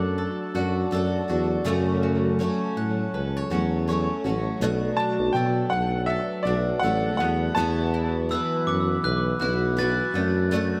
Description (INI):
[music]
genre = acoustic pop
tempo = 81 BPM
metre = 4/4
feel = swing 60% on 16ths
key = B minor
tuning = A4 = 439 Hz
[part]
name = glockenspiel with hard plastic mallets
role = second line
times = 0.0-0.9, 8.3-10.8 s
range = D6 to A6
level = -32 LUFS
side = equal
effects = tape echo
[part]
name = picked steel-string acoustic guitar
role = accompaniment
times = 0.0-10.8 s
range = F#2 to F#4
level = -30 LUFS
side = equal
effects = double-tracked, tape echo
[part]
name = ethereal airy pad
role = sustained chords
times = 0.0-10.8 s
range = F#3 to D6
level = -38 LUFS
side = equal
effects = none
[part]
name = bowl-back mandolin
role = arpeggios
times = 0.0-10.8 s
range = A3 to F#5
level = -38 LUFS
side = equal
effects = tape echo
[part]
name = mellow tuba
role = bass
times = 0.0-10.7 s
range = A1 to B2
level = -28 LUFS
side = equal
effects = none
[part]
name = bright upright piano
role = melody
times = 5.0-8.3 s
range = D5 to A5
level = -29 LUFS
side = equal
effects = tape echo
[sound]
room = light reverb, small room reverb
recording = echo-heavy mix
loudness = -24 LUFS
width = mono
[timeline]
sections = 0.0-10.8 A section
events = none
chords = 0.0 D/F#; 1.7 F#m; 4.6 Bm7; 7.2 Esus2; 10.1 D/F#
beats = 0.18 0.92 | 1.66 2.40 3.13 3.87 | 4.61 5.35 6.09 6.83 | 7.57 8.30 9.04 9.78 | 10.51